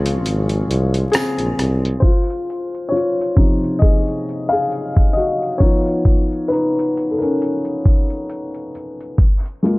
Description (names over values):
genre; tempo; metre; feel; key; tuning
lo-fi hip hop; 67 BPM; 4/4; swing 56% on 16ths; Db major; A4 = 442 Hz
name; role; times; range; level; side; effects
felt-muted upright piano; accompaniment; 0.0-9.8 s; C3 to F5; -19 LUFS; left 1 dB; cassette tape
deep dark ambient pad; sustained chords; 0.0-2.0 s; Ab4 to Db6; -35 LUFS; left 3 dB; chorus, built-in reverb
breathy tuba; bass; 0.0-2.0 s; Ab1 to Db2; -18 LUFS; equal; none
dusty soul sampler-style drum kit; drums; 0.1-9.8 s; hi-hat, kick drum, rim click; -15 LUFS; equal; none
tambourine; percussion; 1.1-1.4 s; none; -36 LUFS; right 6 dB; none
room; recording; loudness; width
light reverb, small room ambience; vinyl crackle, low-pass filter; -15 LUFS; side -23 dB against mid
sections
0.0-2.0 A section; 2.0-9.8 B section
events
break 0.0-2.0; felt piano solo 2.0-9.8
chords
0.0 Dbmaj7; 5.6 Db9; 9.2 Gbmaj9 (rootless)